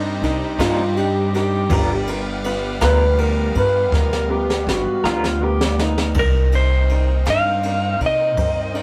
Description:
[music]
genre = slow blues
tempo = 54 BPM (dotted quarters)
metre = 12/8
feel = straight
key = C minor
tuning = A4 = 440 Hz
[part]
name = bright upright piano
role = accompaniment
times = 0.0-8.8 s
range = B3 to D5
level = -31 LUFS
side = equal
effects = none
[part]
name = lush unison pad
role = sustained chords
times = 0.0-8.8 s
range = G3 to F5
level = -30 LUFS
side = equal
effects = chorus
[part]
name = upright bass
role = bass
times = 0.0-8.8 s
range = G1 to C3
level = -23 LUFS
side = equal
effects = none
[part]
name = breathy tenor saxophone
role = second line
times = 0.2-6.2 s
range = Eb4 to B4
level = -23 LUFS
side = equal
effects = none
[part]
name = jazz brush drum kit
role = drums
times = 0.2-8.8 s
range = crash cymbal, kick drum, ride cymbal, snare drum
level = -28 LUFS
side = equal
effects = none
[part]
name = electric guitar through a small old amp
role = accompaniment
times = 0.6-5.3 s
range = C3 to A#4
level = -26 LUFS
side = equal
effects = tremolo
[part]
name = clean lap steel guitar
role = melody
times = 6.2-8.8 s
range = Bb4 to F5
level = -22 LUFS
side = equal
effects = none
[sound]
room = moderate studio reverb, RT60 0.5 s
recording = rough rehearsal-room recording, warm saturation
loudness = -19 LUFS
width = mono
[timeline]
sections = 0.0-6.2 A section; 6.2-8.8 B section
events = tenor saxophone solo 0.0-6.2; drum fill 3.9-6.2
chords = 0.0 Cm7; 1.7 G7#9; 6.2 Cm7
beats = 0.59 | 1.70 2.82 3.93 5.04 | 6.15 7.27 8.38

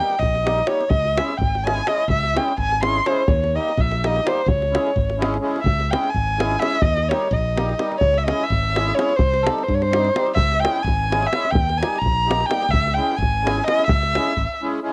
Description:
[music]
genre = balkan folk, Balkan wedding band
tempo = 254 BPM (eighths)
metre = 5/8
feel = straight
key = C# hungarian minor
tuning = A4 = 445 Hz
[part]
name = dark violin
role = melody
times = 0.0-14.6 s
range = A4 to B#5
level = -23 LUFS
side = equal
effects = cassette tape
[part]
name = accordion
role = accompaniment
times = 0.0-14.9 s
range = G3 to G#4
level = -29 LUFS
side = equal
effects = light tremolo tuning, cassette tape
[part]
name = davul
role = percussion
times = 0.1-14.5 s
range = none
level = -25 LUFS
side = equal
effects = none
[part]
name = modern bright fingered electric bass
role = bass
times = 0.2-14.4 s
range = G#1 to G2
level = -26 LUFS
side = equal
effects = none
[sound]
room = moderate studio reverb, RT60 0.6 s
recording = home recording on cassette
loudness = -20 LUFS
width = mono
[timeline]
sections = 0.0-5.6 A section; 5.6-14.9 B section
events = break 14.5-14.9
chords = 0.0 D#; 0.9 C#m; 3.3 D#; 4.5 C#m; 6.8 D#; 8.0 C#m; 9.2 Cm; 10.4 C#m; 11.5 D#; 12.7 C#m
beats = 0.17 0.41 0.65 | 0.88 1.12 1.36 1.60 1.83 | 2.07 2.31 2.55 2.79 3.02 | 3.26 3.50 3.74 3.98 4.22 | 4.45 4.69 4.93 5.17 5.41 | 5.64 5.88 6.12 6.36 6.59 | 6.83 7.07 7.30 7.54 7.77 | 8.01 8.24 8.48 8.71 8.95 | 9.19 9.42 9.65 9.89 10.12 | 10.36 10.59 10.83 11.06 11.29 | 11.53 11.76 12.00 12.23 12.47 | 12.70 12.94 13.17 13.41 13.64 | 13.88 14.11 14.35 14.58 14.82

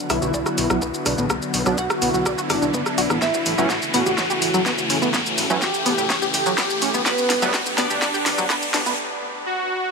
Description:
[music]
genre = melodic techno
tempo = 125 BPM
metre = 4/4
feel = straight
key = unclear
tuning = A4 = 440 Hz
[part]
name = lush unison pad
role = sustained chords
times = 0.0-9.0 s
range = C#3 to G4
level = -29 LUFS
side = left 1 dB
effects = chorus, sidechain pumping
[part]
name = riser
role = sound effects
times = 0.0-9.0 s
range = none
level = -26 LUFS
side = left 1 dB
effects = none
[part]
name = soft supersaw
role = melody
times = 0.1-9.9 s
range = B3 to G4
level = -26 LUFS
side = equal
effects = sidechain pumping, low-pass filter, digital delay
[part]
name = glassy wavetable pluck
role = second line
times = 0.1-8.6 s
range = B4 to G5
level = -31 LUFS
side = right 3 dB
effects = none
[part]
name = tight sequenced synth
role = arpeggios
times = 0.1-8.9 s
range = F#3 to D5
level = -26 LUFS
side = equal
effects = chorus, sidechain pumping, ping-pong delay
[part]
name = gritty driven synth bass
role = bass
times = 0.1-8.9 s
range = D1 to B1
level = -31 LUFS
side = equal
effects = sidechain pumping
[part]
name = deep house drum kit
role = drums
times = 0.1-9.0 s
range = hi-hat, rim click, shaker, snare drum, toms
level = -24 LUFS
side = equal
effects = sidechain pumping on perc, high-pass filter on perc, small room ambience, high-pass filter on snare, sidechain pumping on hats, high-pass filter on hats, sidechain pumping on toms, high-pass filter on toms
[part]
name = electronic kick drum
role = drums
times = 0.3-8.6 s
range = none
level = -35 LUFS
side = equal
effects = none
[part]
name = sync-sweep polysynth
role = stabs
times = 1.7-7.5 s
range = E3 to D4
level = -32 LUFS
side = right 3 dB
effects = none
[sound]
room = moderate huge ambient reverb, RT60 8.1 s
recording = high-pass filter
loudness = -18 LUFS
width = side -4 dB against mid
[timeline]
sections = 0.0-9.9 A section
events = build-up 0.0-9.9; riser 0.0-9.0; filter sweep on synth arpeggio sound 0.0-9.9; filter sweep on supersaw synth 0.0-9.9; filter sweep 0.0-9.9; drum fill 3.2-9.0; break 9.0-9.9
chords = 0.0 Bm; 3.2 A; 7.1 Gadd9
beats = 0.34 0.82 | 1.30 1.78 2.26 2.74 | 3.22 3.70 4.18 4.66 | 5.14 5.62 6.10 6.58 | 7.06 7.54 8.02 8.50 | 8.98 9.46

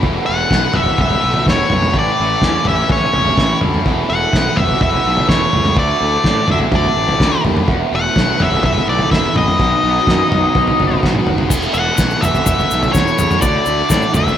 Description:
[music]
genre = indie rock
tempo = 126 BPM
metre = 4/4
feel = straight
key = unclear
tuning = A4 = 440 Hz
[part]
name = overdriven electric guitar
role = riff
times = 0.0-14.4 s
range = E2 to F#4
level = -23 LUFS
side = left 7 dB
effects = none
[part]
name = overdriven electric guitar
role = riff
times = 0.0-14.4 s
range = A2 to E4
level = -21 LUFS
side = right 7 dB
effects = lush chorus, diffuse ambient delay
[part]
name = fuzz picked electric bass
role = bass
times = 0.0-14.3 s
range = E1 to A2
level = -21 LUFS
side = equal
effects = overdrive
[part]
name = cloth-damped thuddy drum kit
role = drums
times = 0.0-14.4 s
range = crash cymbal, kick drum, snare drum, toms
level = -17 LUFS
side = equal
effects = none
[part]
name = octave-fuzz lead guitar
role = melody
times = 0.3-14.4 s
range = C#5 to F#5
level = -17 LUFS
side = left 2 dB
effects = distortion, diffuse ambient delay
[part]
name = tube shaker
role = percussion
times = 11.5-14.3 s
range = none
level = -28 LUFS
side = left 11 dB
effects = none
[sound]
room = moderate plate reverb, RT60 1.5 s, small room reverb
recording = dreamy mix soaked in reverb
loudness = -12 LUFS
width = side -10 dB against mid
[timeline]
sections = 0.0-11.5 A section; 11.5-14.4 A section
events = drum fill 11.0-11.5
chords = 0.0 Esus4; 1.9 A; 3.9 Esus4; 5.8 Dsus2; 7.7 Esus4; 9.6 B; 11.5 Esus4; 13.4 Dsus2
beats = | 0.03 0.51 0.99 1.47 | 1.94 2.42 2.90 3.38 | 3.85 4.33 4.81 5.29 | 5.77 6.25 6.72 7.20 | 7.68 8.16 8.64 9.12 | 9.60 10.07 10.55 11.03 | 11.51 11.98 12.46 12.94 | 13.42 13.89 14.37

